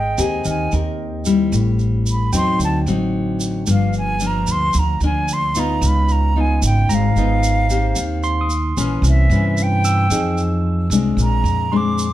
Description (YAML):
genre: bossa nova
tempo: 112 BPM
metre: 4/4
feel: straight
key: unclear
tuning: A4 = 442 Hz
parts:
  - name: concert flute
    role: melody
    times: 0.0-12.1 s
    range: E5 to D6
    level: -22 LUFS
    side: right 2 dB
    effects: none
  - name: barky tine electric piano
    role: accompaniment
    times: 0.0-12.1 s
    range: Eb5 to E6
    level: -29 LUFS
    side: right 3 dB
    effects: medium stereo tremolo
  - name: nylon-string guitar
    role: accompaniment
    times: 0.0-12.1 s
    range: G2 to Bb4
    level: -20 LUFS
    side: left 3 dB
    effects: none
  - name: upright bass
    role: bass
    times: 0.0-12.1 s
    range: G1 to G2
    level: -19 LUFS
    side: right 1 dB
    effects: none
  - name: egg shaker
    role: percussion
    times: 0.2-12.1 s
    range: none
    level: -29 LUFS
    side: right 5 dB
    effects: none
room: light reverb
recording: none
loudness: -15 LUFS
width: side -14 dB against mid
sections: 0.0-12.1 A section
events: flute solo 0.0-12.1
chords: 0.0 Abmaj9; 1.5 Am7; 2.6 D7b9; 3.7 Gm7; 5.8 Db9; 8.0 Eb6; 9.0 C7b9; 10.1 Fm7; 11.2 Bb9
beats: 0.46 0.99 | 1.53 2.06 2.60 3.14 | 3.67 4.21 4.75 5.28 | 5.82 6.36 6.89 7.43 | 7.96 8.50 9.04 9.57 | 10.11 10.65 11.18 11.72